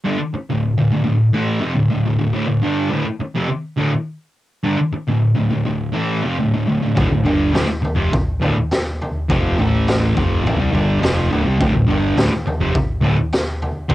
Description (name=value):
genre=garage rock duo or trio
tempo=104 BPM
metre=4/4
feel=straight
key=D minor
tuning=A4 = 439 Hz
part: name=fuzz guitar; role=riff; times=0.0-13.9 s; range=D2 to A3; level=-17 LUFS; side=equal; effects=distortion, cassette tape
part: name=growling picked electric bass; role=bass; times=7.0-13.9 s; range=D1 to C2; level=-21 LUFS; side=equal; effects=overdrive
part: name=raw garage drum kit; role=drums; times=7.0-13.9 s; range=kick drum, snare drum, toms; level=-20 LUFS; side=equal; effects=none
room=light reverb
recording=home recording on cassette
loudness=-16 LUFS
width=side -15 dB against mid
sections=0.0-13.9 A section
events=none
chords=0.0 Dm; 9.6 A5; 10.2 Dm